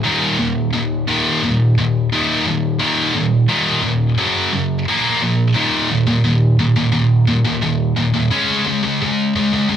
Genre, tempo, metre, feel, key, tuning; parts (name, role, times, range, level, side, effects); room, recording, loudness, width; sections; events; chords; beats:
metal; 87 BPM; 4/4; straight; Eb minor; A4 = 440 Hz
scooped high-gain guitar; solo; 0.0-9.8 s; Eb2 to Db4; -14 LUFS; equal; distortion
moderate stone room reverb, RT60 1.0 s; band playing live in one room; -14 LUFS; side -9 dB against mid
0.0-5.6 A section; 5.6-9.8 B section
0.0 Eb5; 4.2 Gb5; 4.9 Bb5; 5.6 Eb5; 8.3 Db5
| 0.04 0.73 1.42 2.11 | 2.80 3.49 4.18 4.87 | 5.56 6.25 6.94 7.63 | 8.32 9.01 9.70